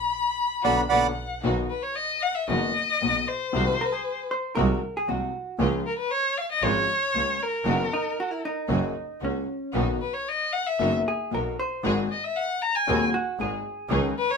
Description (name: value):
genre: tango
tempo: 116 BPM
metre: 4/4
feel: rubato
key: B major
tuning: A4 = 436 Hz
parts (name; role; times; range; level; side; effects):
- rich violin; second line; 0.0-14.4 s; A#4 to B5; -25 LUFS; left 3 dB; none
- bandoneon; melody; 0.6-1.1 s; D5 to B5; -22 LUFS; right 5 dB; none
- dark upright piano; accompaniment; 0.6-14.1 s; D#1 to G#4; -29 LUFS; left 4 dB; none
- warm studio string section; stabs; 0.6-14.1 s; G#3 to G#4; -33 LUFS; right 1 dB; none
- bright double bass; bass; 0.6-14.1 s; F#1 to D#2; -28 LUFS; right 3 dB; none
- vintage hollow-body jazz guitar; second line; 3.8-14.0 s; C#4 to B#4; -30 LUFS; right 2 dB; none
room: moderate studio reverb, RT60 0.7 s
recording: minimal, uncompressed stereo recording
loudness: -23 LUFS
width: side -5 dB against mid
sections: 0.0-1.4 A section; 1.4-14.4 B section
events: band accent 0.0-1.4; violin solo 1.4-14.4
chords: 0.0 Bm; 1.4 B; 3.5 G#7/B#; 5.6 C#; 7.7 B/F#; 8.7 F#; 9.7 B; 11.8 G#7